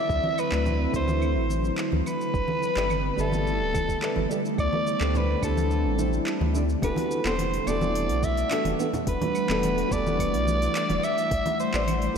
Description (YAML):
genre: sunset chillout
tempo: 107 BPM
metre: 4/4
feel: straight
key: E minor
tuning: A4 = 439 Hz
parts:
  - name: raspy soprano saxophone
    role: melody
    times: 0.0-12.2 s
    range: A4 to E5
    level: -28 LUFS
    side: equal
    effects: analog delay
  - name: ethereal airy pad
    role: sustained chords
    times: 0.0-12.2 s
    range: D3 to F#5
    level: -30 LUFS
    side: equal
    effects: ensemble chorus, built-in reverb, phaser
  - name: round analog bass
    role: bass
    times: 0.1-12.2 s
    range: D1 to D2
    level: -28 LUFS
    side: equal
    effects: none
  - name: electronic kick drum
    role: drums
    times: 0.1-11.4 s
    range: none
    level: -30 LUFS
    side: equal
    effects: overdrive
  - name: smooth R&B drum kit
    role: drums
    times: 0.1-12.1 s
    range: claves, handclaps, hi-hat, shaker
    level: -36 LUFS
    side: right 1 dB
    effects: overdrive
  - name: congas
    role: percussion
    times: 0.2-12.0 s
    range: none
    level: -35 LUFS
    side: right 1 dB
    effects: none
  - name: nylon-string guitar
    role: accompaniment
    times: 0.5-12.2 s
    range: D3 to E5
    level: -31 LUFS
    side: equal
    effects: auto-pan, ping-pong delay
room: wet lush hall reverb, RT60 2.4 s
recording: dreamy mix soaked in reverb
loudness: -23 LUFS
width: side -6 dB against mid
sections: 0.0-6.8 A section; 6.8-12.2 B section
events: kick drops out 6.3-6.8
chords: 0.0 D13; 2.3 G69; 4.6 D9sus4; 6.8 Em11; 11.3 A7sus4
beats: | 0.10 0.66 1.22 1.78 | 2.34 2.90 3.46 4.02 | 4.58 5.14 5.71 6.27 | 6.83 7.39 7.95 8.51 | 9.07 9.63 10.19 10.75 | 11.31 11.87